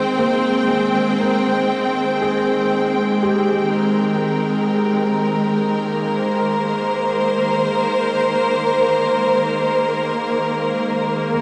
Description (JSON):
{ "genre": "ambient", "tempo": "59 BPM", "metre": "4/4", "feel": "straight", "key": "Ab major", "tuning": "A4 = 440 Hz", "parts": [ { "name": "bright studio string section", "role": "sustained chords", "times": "0.0-11.4 s", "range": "Eb3 to G5", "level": "-19 LUFS", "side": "equal", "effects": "none" }, { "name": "felt-muted upright piano", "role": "arpeggios", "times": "0.2-11.4 s", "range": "Ab3 to Bb4", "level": "-27 LUFS", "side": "equal", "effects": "tape echo" } ], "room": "wet lush hall reverb, RT60 2.8 s", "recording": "dreamy mix soaked in reverb, nothing above 10.4 kHz", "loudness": "-19 LUFS", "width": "mono", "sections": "0.0-11.4 A section", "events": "none", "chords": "0.0 Abmaj7" }